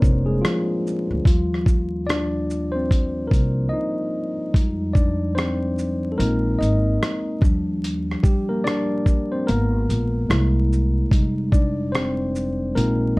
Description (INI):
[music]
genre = lo-fi hip hop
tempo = 73 BPM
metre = 4/4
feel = swing 63% on 16ths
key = unclear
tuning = A4 = 439 Hz
[part]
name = tine electric piano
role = accompaniment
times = 0.0-13.2 s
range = F3 to Eb5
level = -23 LUFS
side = left 1 dB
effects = cassette tape
[part]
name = upright bass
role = bass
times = 0.0-13.2 s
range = F1 to F2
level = -23 LUFS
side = equal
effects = none
[part]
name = dusty soul sampler-style drum kit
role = drums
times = 0.0-13.0 s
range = hi-hat, kick drum, rim click, shaker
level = -19 LUFS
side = equal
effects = none
[sound]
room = light reverb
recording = dark, warm production, vinyl crackle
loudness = -19 LUFS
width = side -24 dB against mid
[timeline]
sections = 0.0-4.5 A section; 4.5-13.2 B section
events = tine electric piano solo 0.0-4.5, 4.5-13.2; break 3.7-4.5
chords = 0.0 Fm9; 1.3 Ebmaj9; 4.5 Fm9; 6.2 Bb7sus4; 7.4 Ebmaj7; 9.5 Abmadd9; 10.3 C7b13; 11.1 Fm9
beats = 0.43 | 1.25 2.07 2.90 3.72 | 4.54 5.36 6.18 7.01 | 7.83 8.65 9.47 10.29 | 11.12 11.94 12.76